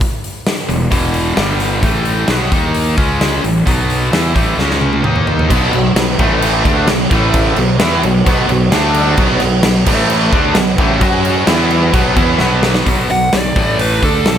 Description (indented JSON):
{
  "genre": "hard rock",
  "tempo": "131 BPM",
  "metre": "4/4",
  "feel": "straight",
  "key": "unclear",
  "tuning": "A4 = 443 Hz",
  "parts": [
    { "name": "big rock drum kit", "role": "drums", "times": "0.0-14.4 s", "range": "crash cymbal, hi-hat, kick drum, snare drum, toms", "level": "-16 LUFS", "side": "equal", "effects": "none" },
    { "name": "tight distorted guitar", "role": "riff", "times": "0.7-14.4 s", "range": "E2 to F#4", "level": "-16 LUFS", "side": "equal", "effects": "distortion" },
    { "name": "fuzz fingered electric bass", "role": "bass", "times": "0.7-14.4 s", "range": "E1 to F#2", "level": "-18 LUFS", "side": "equal", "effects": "overdrive" },
    { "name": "analog string pad", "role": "sustained chords", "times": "5.5-12.9 s", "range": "E3 to E5", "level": "-24 LUFS", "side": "equal", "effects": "none" },
    { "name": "cranked stack guitar", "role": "riff", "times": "5.5-12.9 s", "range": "A2 to F#4", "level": "-18 LUFS", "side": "equal", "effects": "overdrive" },
    { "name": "dark smooth lead guitar", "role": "melody", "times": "13.1-14.4 s", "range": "A4 to F#5", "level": "-16 LUFS", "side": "right 2 dB", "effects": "overdrive" }
  ],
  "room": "light reverb, small room ambience",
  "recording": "none",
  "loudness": "-11 LUFS",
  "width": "side -9 dB against mid",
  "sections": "0.0-5.5 A section; 5.5-12.9 B section; 12.9-14.4 C section",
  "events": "drum fill 4.6-5.5, 12.4-12.9; lead electric guitar solo 12.9-14.4",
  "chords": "0.0 E5; 1.4 G5; 1.8 A5; 2.5 D#5; 3.0 C#5; 3.4 A5; 3.7 B5; 4.1 A5; 4.6 C#5; 5.0 D#5; 5.5 B5; 6.2 A5; 6.7 B5; 7.1 A5; 7.6 B5; 8.7 D5; 9.2 B5; 9.9 A5; 10.3 B5; 11.0 F#5; 11.5 E5; 11.9 B5; 13.6 A5",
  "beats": "| 0.01 0.47 0.93 1.38 | 1.84 2.30 2.75 3.21 | 3.67 4.13 4.59 5.05 | 5.51 5.96 6.42 6.88 | 7.34 7.80 8.26 8.72 | 9.18 9.64 10.10 10.56 | 11.02 11.48 11.94 12.40 | 12.86 13.33 13.79 14.25"
}